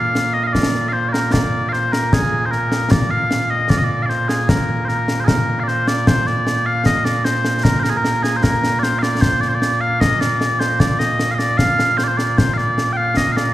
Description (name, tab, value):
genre	scottish traditional, Scottish pipe music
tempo	76 BPM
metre	2/4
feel	straight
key	Bb mixolydian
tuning	A4 = 440 Hz
part	mellow small bagpipes	melody	0.0-13.5 s	Bb2 to G5	-17 LUFS	equal	none
part	concert snare drum and concert bass drum	drums	0.2-13.5 s	none	-19 LUFS	equal	none
room	wet concert hall reverb, RT60 2.2 s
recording	heard from further back in the room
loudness	-15 LUFS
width	side -14 dB against mid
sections	0.0-6.1 A section; 6.1-13.5 B section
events	none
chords	none